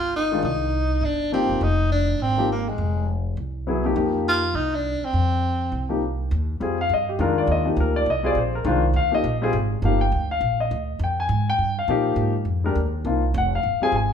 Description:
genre	modal jazz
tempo	204 BPM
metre	4/4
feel	swing 59% on 8ths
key	C minor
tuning	A4 = 439 Hz
part	breathy tenor saxophone	melody	0.0-6.0 s	Ab3 to F4	-23 LUFS	right 1 dB	none
part	upright bass	bass	0.0-14.1 s	F1 to Bb2	-24 LUFS	equal	none
part	warm concert grand piano	accompaniment	0.3-14.1 s	Eb3 to Ab5	-22 LUFS	left 3 dB	none
room	moderate large studio reverb, RT60 1.2 s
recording	band playing live in one room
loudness	-20 LUFS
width	side -7 dB against mid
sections	0.0-6.3 A section; 6.3-14.1 B section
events	none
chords	0.0 Cm7; 1.6 Fm9; 6.3 Cm9; 11.0 Fm9

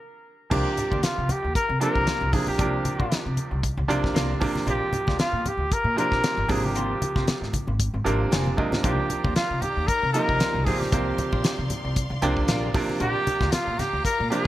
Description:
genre	electric jazz fusion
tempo	115 BPM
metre	4/4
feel	swing 55% on 16ths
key	C minor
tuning	A4 = 440 Hz
part	warm trumpet	melody	0.5-14.5 s	F4 to Bb4	-26 LUFS	equal	none
part	bright concert grand piano	accompaniment	0.5-14.5 s	C3 to Ab5	-28 LUFS	right 3 dB	none
part	clean electric guitar	stabs	0.5-14.5 s	Eb3 to F4	-36 LUFS	left 1 dB	lush chorus
part	upright bass	bass	0.5-14.3 s	F1 to C3	-28 LUFS	equal	none
part	damped 70s drum kit	drums	0.5-14.4 s	crash cymbal, hi-hat, kick drum, snare drum	-27 LUFS	equal	gated reverb
part	congas	percussion	0.5-13.9 s	none	-32 LUFS	left 1 dB	none
part	clear symphonic string section	sustained chords	8.8-14.5 s	Eb3 to C6	-37 LUFS	left 2 dB	none
room	light reverb, small room ambience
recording	bright 1980s-style digital production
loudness	-22 LUFS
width	side -14 dB against mid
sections	0.5-14.5 A section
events	stop 0.0-0.5; grand piano fill 3.6-4.7, 8.1-8.8, 12.0-13.0; drum fill 8.3-8.8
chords	0.0 N.C.; 0.5 Cm11; 4.4 Bb7; 6.5 Ab69; 8.8 Cm11; 12.7 Bb7

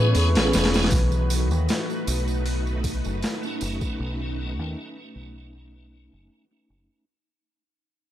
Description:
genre	trip hop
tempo	78 BPM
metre	4/4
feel	swing 53% on 16ths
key	unclear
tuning	A4 = 443 Hz
part	cimbalom	melody	0.0-2.2 s	B4 to D#5	-31 LUFS	left 1 dB	tape echo
part	tonewheel organ	accompaniment	0.0-7.1 s	A3 to G#4	-29 LUFS	right 1 dB	overdrive, chorus vibrato, slow rotary speaker, harmonic tremolo, vintage 12-bit sampler grit, low-pass filter, tape echo
part	string machine, cellos	sustained chords	0.0-7.0 s	A3 to C#5	-32 LUFS	equal	ensemble chorus
part	concert harp	arpeggios	0.0-3.5 s	E3 to C#4	-33 LUFS	left 3 dB	vintage 12-bit sampler grit, tape echo
part	deep dub fingered electric bass	bass	0.0-6.9 s	E1 to A2	-24 LUFS	equal	tube saturation
part	boom bap sampler-style drum kit	drums	0.1-4.0 s	hi-hat, kick drum, snare drum	-26 LUFS	equal	overdrive
part	tambourine	percussion	0.1-4.0 s	none	-36 LUFS	right 9 dB	none
room	little or no reverb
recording	dry, gritty hardware recording, transformer saturation, vinyl crackle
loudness	-22 LUFS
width	side -12 dB against mid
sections	0.9-7.1 A section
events	break 0.0-0.9; fade-out 0.9-7.1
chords	0.0 Amaj7; 0.9 B7

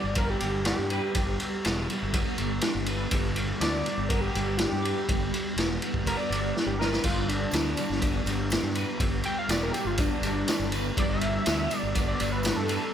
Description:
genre	psychedelic rock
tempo	122 BPM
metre	4/4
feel	straight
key	G major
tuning	A4 = 440 Hz
part	fat analog lead	melody	0.0-12.9 s	D4 to G5	-32 LUFS	equal	tape echo
part	clean electric guitar	riff	0.0-12.9 s	G3 to B4	-32 LUFS	equal	rotary speaker, double-tracked left and right
part	fuzz fingered electric bass	bass	0.0-12.8 s	E1 to G2	-32 LUFS	equal	overdrive
part	raw garage drum kit	drums	0.2-12.8 s	kick drum, ride cymbal, snare drum, splash cymbal	-28 LUFS	equal	none
part	tambourine	percussion	7.5-12.8 s	none	-45 LUFS	right 8 dB	none
room	small room ambience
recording	none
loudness	-25 LUFS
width	side -9 dB against mid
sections	0.0-12.9 A section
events	analog synth lead solo 0.0-12.9; drum fill 6.6-7.1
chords	0.0 G

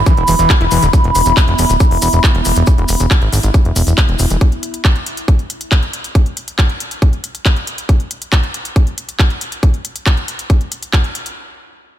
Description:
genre	psychedelic trance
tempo	138 BPM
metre	4/4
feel	straight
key	unclear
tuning	A4 = 440 Hz
part	fat analog bass	bass	0.0-4.4 s	D1 to G#1	-14 LUFS	equal	none
part	warbly tape-like pad	texture	0.0-4.4 s	B3 to B5	-17 LUFS	equal	chorus, built-in reverb, sidechain pumping
part	overdriven acid bass	riff	0.1-0.9 s	D3 to E4	-20 LUFS	moving between left 3 dB and right 3 dB	distortion, auto-pan, sidechain pumping, digital delay
part	electronic kick drum	drums	0.1-11.0 s	none	-11 LUFS	equal	small room reverb
part	techno drum kit	drums	0.1-11.3 s	handclaps, hi-hat	-21 LUFS	equal	small room reverb
part	maracas	percussion	0.1-4.4 s	none	-24 LUFS	left 1 dB	none
room	light reverb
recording	dense, heavily limited modern master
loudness	-12 LUFS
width	side -11 dB against mid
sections	0.0-11.4 A section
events	none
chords	0.0 E5

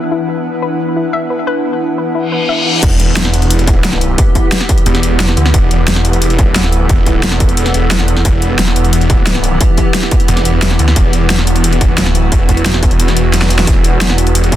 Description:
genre	dark technical drum and bass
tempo	177 BPM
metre	4/4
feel	straight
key	E minor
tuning	A4 = 440 Hz
part	swarming drone	sustained chords	0.0-14.6 s	E3 to A4	-18 LUFS	equal	built-in reverb, sidechain pumping
part	soft round pluck	arpeggios	0.0-2.7 s	E4 to E5	-20 LUFS	left 5 dB	chorus, sidechain pumping, ping-pong delay
part	airy breathy pad	texture	0.0-14.6 s	E4 to F#5	-20 LUFS	equal	chorus, sidechain pumping
part	reverse cymbal and impact	sound effects	2.3-4.2 s	none	-18 LUFS	left 2 dB	none
part	snarling distorted saw bass	bass	2.8-14.6 s	E1 to D2	-13 LUFS	equal	tube saturation, sidechain pumping
part	dubstep drum kit	drums	2.8-14.6 s	crash cymbal, hi-hat, snare drum	-16 LUFS	equal	low-pass filter on hats, studio ambience, low-pass filter on cymbals, low-pass filter on snare
part	electronic kick drum	drums	2.8-14.6 s	none	-12 LUFS	equal	distortion, studio ambience
room	digital ambience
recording	dense, heavily limited modern master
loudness	-10 LUFS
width	side -12 dB against mid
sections	0.0-2.8 A section; 2.8-14.6 B section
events	reverse cymbal 2.3-2.8; drop 2.8-14.6; impact 2.8-4.2; drum fill 13.3-13.7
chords	0.0 E5; 2.8 Em

